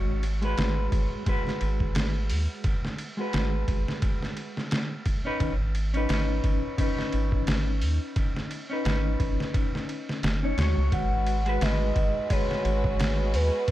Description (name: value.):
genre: trip hop.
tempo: 87 BPM.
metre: 4/4.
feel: swing 56% on 16ths.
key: G# minor.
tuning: A4 = 440 Hz.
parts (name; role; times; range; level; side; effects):
mellow electric guitar; accompaniment; 0.0-13.7 s; G#3 to C#5; -32 LUFS; left 1 dB; harmonic tremolo, tape echo.
round analog bass; bass; 0.0-13.5 s; F#1 to D#2; -26 LUFS; equal; none.
trip hop sampler-style drum kit; drums; 0.2-13.7 s; hi-hat, kick drum, ride cymbal, snare drum; -28 LUFS; equal; overdrive.
pure breathy sine lead; melody; 10.9-13.7 s; B4 to F#5; -29 LUFS; equal; chorus.
warm studio violin section; sustained chords; 10.9-13.7 s; G#3 to B4; -35 LUFS; equal; none.
room: little or no reverb.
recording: none.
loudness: -24 LUFS.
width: side -14 dB against mid.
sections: 0.0-13.7 A section.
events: none.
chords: 0.0 G#m7; 5.4 Badd9/G#; 10.9 G#m7.